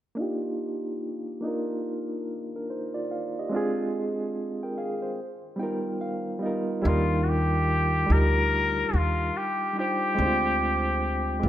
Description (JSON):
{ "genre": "hip hop", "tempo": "72 BPM", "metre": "4/4", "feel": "swing 65% on 16ths", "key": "Eb major", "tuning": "A4 = 440 Hz", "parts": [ { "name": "barky reed electric piano", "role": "accompaniment", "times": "0.2-11.5 s", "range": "G3 to G5", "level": "-28 LUFS", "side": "right 1 dB", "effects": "overdrive, fast tremolo, cassette tape, low-pass filter" }, { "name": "trumpet with straight mute", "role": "melody", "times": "6.8-11.5 s", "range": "Fb4 to Bb4", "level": "-26 LUFS", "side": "left 2 dB", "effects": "low-pass filter" }, { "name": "upright bass", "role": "bass", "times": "6.9-11.5 s", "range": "C2 to Eb2", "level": "-25 LUFS", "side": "equal", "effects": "none" } ], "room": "moderate plate reverb, RT60 2.7 s", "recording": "rough home demo mix", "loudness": "-25 LUFS", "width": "side -12 dB against mid", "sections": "0.2-6.8 A section; 6.8-11.5 B section", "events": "filter sweep on reed electric piano 0.2-6.8; reed electric piano fill 5.2-6.8", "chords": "0.2 Ebmaj9; 3.5 Dm7b5; 5.2 G7alt; 6.8 Ebmaj9; 10.2 Dm7b5" }